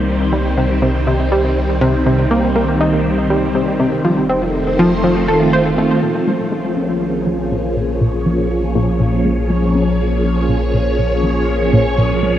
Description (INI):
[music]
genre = ambient, sequencer-driven space music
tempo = 121 BPM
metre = 4/4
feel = straight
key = C minor, Bb minor from 6.0 s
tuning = A4 = 441 Hz
[part]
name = phased string machine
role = sustained chords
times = 0.0-12.4 s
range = Eb3 to Db5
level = -16 LUFS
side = equal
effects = ensemble chorus, phaser
[part]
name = round analog bass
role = bass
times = 0.0-12.4 s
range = F1 to C2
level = -21 LUFS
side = equal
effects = none
[part]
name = wind-like tuned noise texture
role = texture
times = 0.0-6.0 s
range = C5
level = -32 LUFS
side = right 1 dB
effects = built-in reverb
[part]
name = tight sequenced synth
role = riff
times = 0.3-12.4 s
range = Bb2 to C5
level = -18 LUFS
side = equal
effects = chorus, tape echo
[sound]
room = wet huge ambient reverb, RT60 7.1 s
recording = worn, warbling old tape, cassette tape, warbly pitch drift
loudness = -13 LUFS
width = side -11 dB against mid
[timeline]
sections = 0.0-6.0 A section; 6.0-12.4 B section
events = filter sweep on synth arpeggio sound 6.0-12.4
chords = 0.0 Cm; 4.0 F7; 6.0 Bbm7